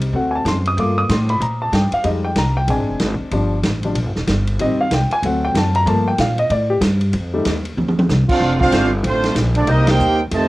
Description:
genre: jazz, big band swing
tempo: 189 BPM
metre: 4/4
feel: swing 62% on 8ths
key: unclear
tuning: A4 = 442 Hz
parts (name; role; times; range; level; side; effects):
- warm baby grand piano; accompaniment; 0.0-7.5 s; Eb3 to Eb6; -19 LUFS; left 1 dB; cassette tape
- upright bass; bass; 0.0-10.5 s; Eb1 to Bb2; -19 LUFS; equal; none
- vintage drum kit; drums; 0.0-10.4 s; crash cymbal, hi-hat, kick drum, ride cymbal, snare drum, toms; -22 LUFS; equal; cassette tape
- clear trumpet section; melody; 8.3-10.5 s; A3 to A5; -21 LUFS; right 1 dB; none
- warm trombone section; second line; 8.3-10.5 s; C3 to G4; -18 LUFS; right 2 dB; cassette tape
- mellow saxophone section; sustained chords; 8.7-10.2 s; A3 to C5; -25 LUFS; left 1 dB; cassette tape
room: light reverb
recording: home recording on cassette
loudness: -15 LUFS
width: side -18 dB against mid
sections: 0.0-8.4 A section; 8.4-10.5 B section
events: grand piano solo 0.0-8.4; drum fill 7.8-8.1; band accent 9.8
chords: 0.1 D7; 0.8 Gm7; 2.1 Fm7; 2.7 Bb7; 3.3 Ebmaj7 (rootless); 4.6 Am7b5; 5.2 D7; 5.9 Gm7; 7.1 F7; 8.4 F6; 9.7 Cm7

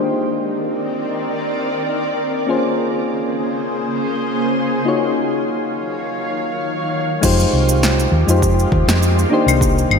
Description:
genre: sunset chillout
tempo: 101 BPM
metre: 4/4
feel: swing 54% on 16ths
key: F minor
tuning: A4 = 441 Hz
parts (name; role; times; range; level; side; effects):
- soft electric-piano-like synth keys; accompaniment; 0.0-10.0 s; Ab3 to Db5; -20 LUFS; moving between left 5 dB and right 1 dB; chorus, auto-pan, low-pass filter, digital delay
- shimmering ambient pad; sustained chords; 0.0-10.0 s; Bb2 to F5; -21 LUFS; equal; chorus, built-in reverb
- hollow-body short-scale fingered electric bass; bass; 7.2-10.0 s; G1 to F2; -16 LUFS; equal; none
- deep house drum kit; drums; 7.2-10.0 s; claves, crash cymbal, shaker, snare drum; -20 LUFS; left 1 dB; gated reverb
- electronic kick drum; drums; 7.2-9.7 s; none; -19 LUFS; equal; none
room: wet lush hall reverb, RT60 1.8 s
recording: bright 1980s-style digital production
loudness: -16 LUFS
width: side -6 dB against mid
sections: 0.0-7.2 A section; 7.2-10.0 B section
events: filter sweep on synth keys 0.0-7.2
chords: 0.0 Cm9; 2.5 Bbm9; 4.9 Ebm9; 7.2 Fm9; 9.3 Cm9

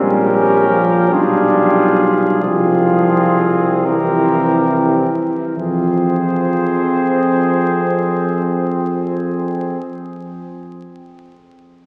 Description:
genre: classical, hymn-like piece for brass band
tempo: 33-52 BPM (dotted quarters)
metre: 6/8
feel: rubato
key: F minor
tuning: A4 = 440 Hz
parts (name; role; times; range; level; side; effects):
- warm cornet; melody; 0.0-9.8 s; Ab4 to C5; -25 LUFS; equal; none
- warm flugelhorn; second line; 0.0-9.8 s; F4 to Ab4; -25 LUFS; equal; none
- bright trombone section; accompaniment; 0.0-9.8 s; C4 to D4; -22 LUFS; equal; none
- mellow trombone; accompaniment; 0.0-9.8 s; E3 to G3; -20 LUFS; equal; none
- warm tuba; bass; 0.0-9.8 s; Bb1 to F2; -23 LUFS; equal; none
room: wet cathedral reverb, RT60 4.5 s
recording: very old 78 rpm record, vinyl crackle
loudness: -15 LUFS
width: mono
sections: 0.0-5.6 A section; 5.6-9.0 B section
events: slowing down 0.0-5.6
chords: 0.0 Gdim/Bb; 1.1 Bdim7; 2.4 Fm/C; 3.9 C7; 5.6 Fm

